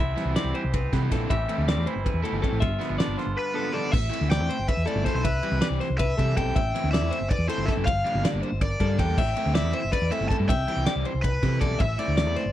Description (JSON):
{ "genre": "math rock and midwest emo", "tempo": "320 BPM (eighths)", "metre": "7/8", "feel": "straight", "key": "unclear", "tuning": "A4 = 439 Hz", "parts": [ { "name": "twangy electric guitar", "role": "accompaniment", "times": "0.0-3.9 s", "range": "G2 to G4", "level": "-34 LUFS", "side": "right 8 dB", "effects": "none" }, { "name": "clean electric guitar", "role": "arpeggios", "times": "0.0-12.5 s", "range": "A4 to F5", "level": "-31 LUFS", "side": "left 6 dB", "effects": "none" }, { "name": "hollow-body short-scale fingered electric bass", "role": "bass", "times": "0.0-12.5 s", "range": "F#1 to C3", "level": "-27 LUFS", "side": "equal", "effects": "none" }, { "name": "crunchy overdriven guitar", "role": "riff", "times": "0.2-12.4 s", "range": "D3 to E4", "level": "-31 LUFS", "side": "right 1 dB", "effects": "none" }, { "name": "loose indie drum kit", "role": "drums", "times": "0.2-12.5 s", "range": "crash cymbal, kick drum, ride cymbal, snare drum", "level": "-28 LUFS", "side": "equal", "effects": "none" }, { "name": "cranked stack guitar", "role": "melody", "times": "3.4-12.5 s", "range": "B4 to A5", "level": "-30 LUFS", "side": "equal", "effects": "overdrive" } ], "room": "little or no reverb", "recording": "tape saturation", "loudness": "-22 LUFS", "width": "side -12 dB against mid", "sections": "0.0-3.9 A section; 3.9-12.5 B section", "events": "none", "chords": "0.0 Cmaj7; 1.3 Am7; 2.6 G7; 3.9 Am7; 5.2 Cmaj7; 6.6 Am7; 7.9 Gm7; 9.2 Am7; 10.5 Cmaj7; 11.8 Am", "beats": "0.17 0.36 0.55 0.73 0.92 1.11 | 1.30 1.49 1.67 1.86 2.05 2.24 2.43 | 2.61 2.80 2.99 3.18 3.37 3.55 3.74 | 3.93 4.12 4.30 4.49 4.68 4.87 5.05 | 5.24 5.43 5.62 5.80 5.99 6.18 6.37 | 6.55 6.74 6.93 7.12 7.30 7.49 7.68 | 7.87 8.05 8.24 8.43 8.62 8.80 8.99 | 9.18 9.37 9.55 9.74 9.93 10.12 10.30 | 10.49 10.68 10.87 11.05 11.24 11.43 11.62 | 11.80 11.99 12.18 12.37" }